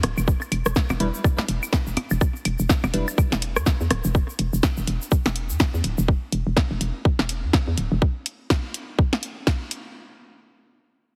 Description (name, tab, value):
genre	minimal techno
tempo	124 BPM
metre	4/4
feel	swing 58% on 16ths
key	E minor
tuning	A4 = 440 Hz
part	hollow knocking FM bass	bass	0.0-8.0 s	D1 to E2	-27 LUFS	equal	sidechain pumping
part	punchy analog drum machine	drums	0.0-9.8 s	hi-hat, snare drum	-29 LUFS	equal	none
part	electronic rim click, percussion blips and claves	percussion	0.0-4.0 s	none	-29 LUFS	equal	digital delay
part	tube shaker	percussion	0.2-6.1 s	none	-39 LUFS	equal	none
part	electronic kick drum	drums	0.3-9.6 s	none	-22 LUFS	equal	none
part	wavetable chord stab	stabs	1.0-3.1 s	G3 to B4	-32 LUFS	equal	cassette tape, digital delay
room	light reverb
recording	heavily compressed radio sound, multiband compression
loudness	-23 LUFS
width	mono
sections	0.0-10.0 A section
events	drop 0.0-10.0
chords	none